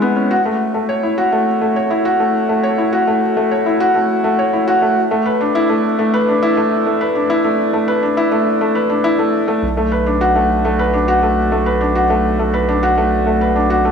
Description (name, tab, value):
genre	piano and strings electronica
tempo	103 BPM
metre	4/4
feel	straight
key	unclear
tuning	A4 = 440 Hz
part	felt-muted upright piano	riff	0.0-13.9 s	G#3 to C#5	-13 LUFS	left 1 dB	tape echo
part	round analog bass	bass	0.0-13.9 s	E1 to C#2	-24 LUFS	right 2 dB	high-pass filter
room	wet lush hall reverb, RT60 2.1 s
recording	studio reverb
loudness	-13 LUFS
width	side -6 dB against mid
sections	0.0-9.6 A section; 9.6-13.9 B section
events	build-up 0.0-9.6; drop 9.6-13.9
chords	0.3 F#m7; 5.0 E7sus4; 9.6 Bm7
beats	| 0.31 0.89 1.47 2.05 | 2.64 3.22 3.80 4.38 | 4.97 5.55 6.13 6.71 | 7.30 7.88 8.46 9.04 | 9.63 10.21 10.79 11.38 | 11.96 12.54 13.12 13.71